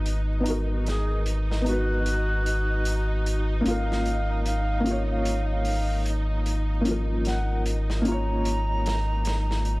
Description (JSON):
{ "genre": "trip hop", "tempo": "75 BPM", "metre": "4/4", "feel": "swing 60% on 16ths", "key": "unclear", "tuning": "A4 = 440 Hz", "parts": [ { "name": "felt-muted upright piano", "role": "accompaniment", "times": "0.0-9.8 s", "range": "E#3 to C#5", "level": "-30 LUFS", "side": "left 1 dB", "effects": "tremolo" }, { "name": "rich symphonic string section", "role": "sustained chords", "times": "0.0-9.8 s", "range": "D#4", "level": "-36 LUFS", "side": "right 1 dB", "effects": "none" }, { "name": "soft dub sub bass", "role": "bass", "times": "0.0-9.8 s", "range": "G#1", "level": "-26 LUFS", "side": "equal", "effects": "tube saturation" }, { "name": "crunchy breakbeat drum kit", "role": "drums", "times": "0.1-9.8 s", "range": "hi-hat, snare drum", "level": "-36 LUFS", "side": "equal", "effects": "high-pass filter on hats, high-pass filter on snare, high-pass filter on room" }, { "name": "bright reedy baroque flute", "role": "melody", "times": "0.9-9.8 s", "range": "F#4 to A#5", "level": "-32 LUFS", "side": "equal", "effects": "tape echo" } ], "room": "light reverb", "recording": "vinyl crackle", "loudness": "-23 LUFS", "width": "side -21 dB against mid", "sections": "0.0-9.8 A section", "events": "none", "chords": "0.0 G#m7; 3.7 A#m/G#" }